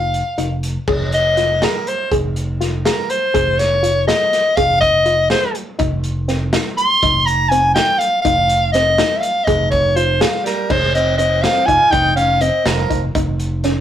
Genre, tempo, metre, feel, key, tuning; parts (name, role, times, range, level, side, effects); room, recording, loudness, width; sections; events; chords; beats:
progressive instrumental, band music in an uneven meter; 245 BPM (eighths); 5/8; straight; F minor; A4 = 444 Hz
bright soprano saxophone; melody; 0.0-13.0 s; Bb4 to C6; -15 LUFS; equal
soft round pluck; arpeggios; 0.0-13.8 s; C4 to Ab4; -22 LUFS; left 2 dB; chorus
modern bright fingered electric bass; bass; 0.0-13.8 s; F1; -21 LUFS; right 1 dB
crunchy breakbeat drum kit; drums; 0.1-13.8 s; crash cymbal, hi-hat, kick drum, snare drum; -22 LUFS; right 1 dB
edgy alto saxophone; second line; 10.4-13.0 s; F3 to F4; -23 LUFS; right 3 dB
moderate small room reverb, RT60 0.5 s; rough rehearsal-room recording; -13 LUFS; side -10 dB against mid
0.9-10.7 A section; 10.7-13.8 B section
soprano saxophone solo 0.9-10.7
0.0 F5; 0.9 Fm7; 5.8 F7(no3); 9.5 Fm; 10.7 F5; 13.2 Eb7sus2/F
0.14 0.38 0.63 | 0.88 1.13 1.37 1.62 1.87 | 2.11 2.36 2.60 2.85 3.10 | 3.34 3.59 3.83 4.08 4.33 | 4.57 4.82 5.06 5.31 5.55 | 5.80 6.04 6.29 6.54 6.78 | 7.03 7.27 7.52 7.76 8.01 | 8.25 8.50 8.74 8.99 9.23 | 9.48 9.72 9.97 10.21 10.46 | 10.70 10.95 11.19 11.44 11.68 | 11.93 12.17 12.42 12.66 12.91 | 13.15 13.40 13.64